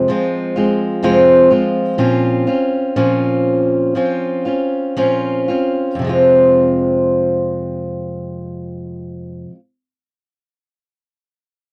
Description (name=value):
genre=folk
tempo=57-64 BPM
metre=4/4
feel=straight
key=F minor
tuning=A4 = 441 Hz
part: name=picked steel-string acoustic guitar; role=accompaniment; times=0.0-9.6 s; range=F2 to F4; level=-16 LUFS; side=equal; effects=none
room=light reverb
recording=dry, close 1970s-style studio recording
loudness=-15 LUFS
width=mono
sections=0.0-6.0 A section; 6.0-10.2 B section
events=slowing down 0.0-6.0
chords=0.0 Fm; 2.0 Bbmadd9; 6.0 Fm